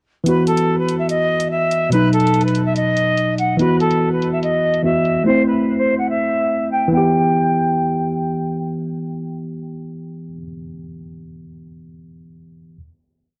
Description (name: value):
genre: hip hop, drill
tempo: 144 BPM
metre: 4/4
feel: half-time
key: E harmonic minor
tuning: A4 = 440 Hz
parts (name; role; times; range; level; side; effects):
- tine electric piano; accompaniment; 0.2-12.8 s; B2 to G4; -21 LUFS; equal; overdrive
- breathy concert flute; melody; 0.3-8.1 s; A4 to G5; -21 LUFS; equal; digital delay
- electronic hi-hat; drums; 0.3-5.1 s; none; -35 LUFS; equal; none
room: light reverb, small room reverb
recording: worn, warbling old tape, cassette tape, warbly pitch drift, low-pass filter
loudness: -18 LUFS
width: mono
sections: 0.3-6.9 breakdown; 6.9-10.3 final chord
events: none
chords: 0.3 Esus2; 1.9 B; 3.6 Esus2; 5.3 Am; 6.9 Em